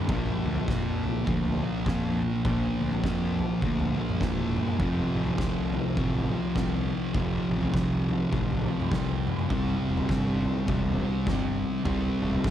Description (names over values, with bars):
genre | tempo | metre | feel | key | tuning
stoner and doom metal | 102 BPM | 4/4 | swing 60% on 8ths | unclear | A4 = 440 Hz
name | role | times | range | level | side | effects
thick fuzz guitar | riff | 0.0-12.5 s | F2 to C4 | -29 LUFS | left 5 dB | distortion
thick fuzz guitar | riff | 0.0-12.5 s | F2 to C4 | -31 LUFS | right 8 dB | distortion
fuzz picked electric bass | bass | 0.1-12.5 s | E1 to F2 | -32 LUFS | equal | overdrive
oversized low-tuned drum kit | drums | 0.1-12.5 s | kick drum, snare drum, toms | -31 LUFS | equal | none
room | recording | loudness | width
little or no reverb | none | -25 LUFS | side -11 dB against mid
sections
0.0-12.5 A section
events
none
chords
0.1 Bb; 4.8 F; 9.5 C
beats
| 0.10 0.68 1.27 1.86 | 2.45 3.03 3.62 4.21 | 4.79 5.38 5.97 6.56 | 7.15 7.74 8.32 8.91 | 9.50 10.09 10.68 11.27 | 11.86 12.44